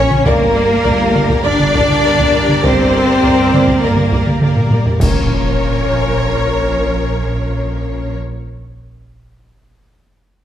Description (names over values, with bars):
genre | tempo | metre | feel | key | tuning
cinematic, epic orchestral film score | 101 BPM | 4/4 | straight | Bb dorian | A4 = 440 Hz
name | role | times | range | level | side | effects
warm symphonic violin section | melody | 0.0-8.1 s | Bb4 to D5 | -23 LUFS | left 2 dB | none
warm symphonic violin section | second line | 0.0-8.1 s | Bb4 to D5 | -23 LUFS | left 2 dB | none
dark symphonic viola section | accompaniment | 0.0-8.1 s | Bb4 to D5 | -23 LUFS | equal | none
mellow French horn section | sustained chords | 0.0-8.1 s | Bb3 to D4 | -18 LUFS | left 2 dB | none
rich symphonic string section | sustained chords | 0.0-8.1 s | Bb3 to D5 | -23 LUFS | equal | none
clear symphonic cello section | bass | 0.0-8.1 s | F3 to D4 | -22 LUFS | right 1 dB | none
rich symphonic double bass section | bass | 0.0-8.1 s | G1 to Bb1 | -20 LUFS | right 3 dB | none
solo taiko drums | drums | 0.1-6.1 s | none | -17 LUFS | right 1 dB | none
clash cymbals and concert bass drum | percussion | 5.0-6.2 s | none | -23 LUFS | equal | none
impact | sound effects | 5.0-8.9 s | none | -25 LUFS | equal | none
room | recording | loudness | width
wet scoring stage reverb, RT60 1.4 s | none | -11 LUFS | side -10 dB against mid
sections
0.0-5.0 A section; 5.0-7.4 B section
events
drum fill 4.4-5.0; band accent 5.0-5.6; impact 5.0-7.4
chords
0.3 Gm; 5.0 Bbm